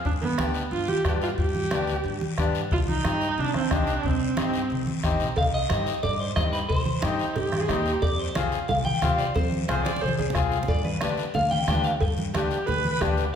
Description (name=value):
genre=latin, cumbia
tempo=181 BPM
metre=4/4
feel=straight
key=C harmonic minor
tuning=A4 = 441 Hz
part: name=warm viola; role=second line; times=0.1-13.3 s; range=B3 to D5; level=-28 LUFS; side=right 3 dB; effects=none
part: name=upright bass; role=bass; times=0.1-13.3 s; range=G1 to G2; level=-30 LUFS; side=left 1 dB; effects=none
part: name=bombo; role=percussion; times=0.1-13.2 s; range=none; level=-30 LUFS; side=left 1 dB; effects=none
part: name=congas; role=percussion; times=0.1-13.2 s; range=none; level=-32 LUFS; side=right 1 dB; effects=none
part: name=guiro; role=percussion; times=0.1-13.3 s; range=none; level=-39 LUFS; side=left 6 dB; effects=none
part: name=accordion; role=accompaniment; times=0.4-13.2 s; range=B3 to Ab4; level=-31 LUFS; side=left 5 dB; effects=none
part: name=clean electric guitar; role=melody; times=5.4-13.0 s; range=B4 to G5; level=-28 LUFS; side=equal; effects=spring reverb, slapback echo
part: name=cowbell and timbales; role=percussion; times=5.4-13.2 s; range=none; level=-35 LUFS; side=right 2 dB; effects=none
room=wet large studio reverb, RT60 1.4 s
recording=heard from further back in the room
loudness=-22 LUFS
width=side -8 dB against mid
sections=0.0-5.4 A section; 5.4-13.4 B section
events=viola solo 0.0-5.4; drum fill 9.8-10.7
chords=0.1 G; 2.7 Cm; 8.0 Fm; 10.7 G